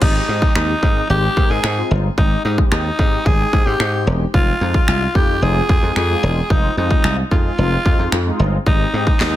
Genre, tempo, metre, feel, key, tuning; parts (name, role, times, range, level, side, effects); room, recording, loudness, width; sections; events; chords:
dance-pop; 111 BPM; 4/4; straight; Ab major; A4 = 441 Hz
raspy alto saxophone; melody; 0.0-9.4 s; Eb4 to Ab4; -20 LUFS; equal; ping-pong delay
mellow synth brass; accompaniment; 0.0-9.3 s; Ab3 to Bb4; -25 LUFS; left 2 dB; chorus, sidechain pumping
dry thumbed slap bass; bass; 0.0-9.4 s; Fb1 to Ab2; -19 LUFS; equal; sidechain pumping
house drum kit; drums; 0.0-9.3 s; crash cymbal, finger snaps, handclaps, kick drum, snare drum; -16 LUFS; equal
little or no reverb; -14 LUFS; side -13 dB against mid
0.0-9.4 A section
0.0 Abmaj7; 4.3 Fm7; 8.7 Abmaj7